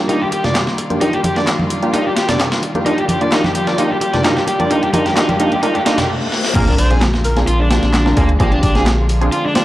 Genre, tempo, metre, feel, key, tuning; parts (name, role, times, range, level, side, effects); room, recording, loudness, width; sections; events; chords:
breakbeat, breaks; 130 BPM; 4/4; straight; Bb mixolydian; A4 = 437 Hz
rich chamber string section; sustained chords; 0.0-9.6 s; D3 to D5; -25 LUFS; equal; vintage 12-bit sampler grit, sidechain pumping, low-pass filter
orchestra-hit-like synth stab; stabs; 0.0-9.6 s; Bb3 to Bb4; -19 LUFS; equal; built-in reverb, analog delay
riser, reverse cymbal and impact; sound effects; 1.9-8.4 s; -25 LUFS; left 1 dB
crunchy overdriven guitar; riff; 0.1-9.6 s; Bb3 to D5; -19 LUFS; equal; analog delay
breakbeat sampler-style drum kit; drums; 0.1-9.6 s; crash cymbal, hi-hat, kick drum, snare drum; -20 LUFS; equal; overdrive, high-pass filter on snare, high-pass filter on hats, high-pass filter on kick, high-pass filter on cymbals, high-pass filter on room
garage drum kit; drums; 0.1-9.6 s; handclaps, hi-hat; -26 LUFS; equal; high-pass filter on hats, high-pass filter on snare
congas; percussion; 0.4-6.1 s; -23 LUFS; equal
airy dreamy lead; melody; 6.5-8.9 s; G4 to C5; -25 LUFS; equal; chorus, small speaker sound, analog delay
saturated sub bass; bass; 6.6-9.3 s; Bb1 to D2; -16 LUFS; equal
light reverb; dry, gritty hardware recording, cassette tape; -13 LUFS; side -15 dB against mid
0.0-6.6 A section; 6.6-9.6 B section
build-up 0.0-6.6; filter sweep on synth stab 0.0-6.6; reverse cymbal 5.6-6.6; stop 6.1-6.6; drum fill 6.3; drop 6.6-9.6; impact 6.6-8.4
0.0 Ebmaj9; 6.6 Bb7